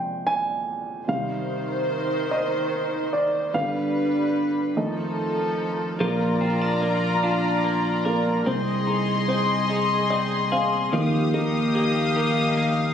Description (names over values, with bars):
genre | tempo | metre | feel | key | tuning
six-eight pop ballad | 49 BPM (dotted quarters) | 6/8 | straight | C harmonic minor | A4 = 440 Hz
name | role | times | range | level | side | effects
warm grand piano | accompaniment | 0.0-12.9 s | F2 to Ab5 | -26 LUFS | right 2 dB | none
warm studio string section | sustained chords | 1.1-12.9 s | Eb3 to Eb6 | -25 LUFS | left 2 dB | none
twelve-string electric guitar | arpeggios | 6.0-12.9 s | F3 to Bb4 | -29 LUFS | left 2 dB | none
fingered electric bass | bass | 6.0-12.9 s | Bb1 to Eb2 | -25 LUFS | equal | none
room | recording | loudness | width
light reverb | recorded on a phone in the room, club reverb | -21 LUFS | side -8 dB against mid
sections
0.0-6.0 A section; 6.0-12.9 B section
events
grand piano solo 0.0-6.0; grand piano fill 9.7-10.9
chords
0.0 Fm; 1.1 Cm; 3.5 G; 4.8 F7; 6.0 Bb; 8.5 Ab/C; 10.9 Ebadd9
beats
| 1.08 2.31 | 3.54 4.77 | 6.00 7.23 | 8.46 9.69 | 10.93 12.15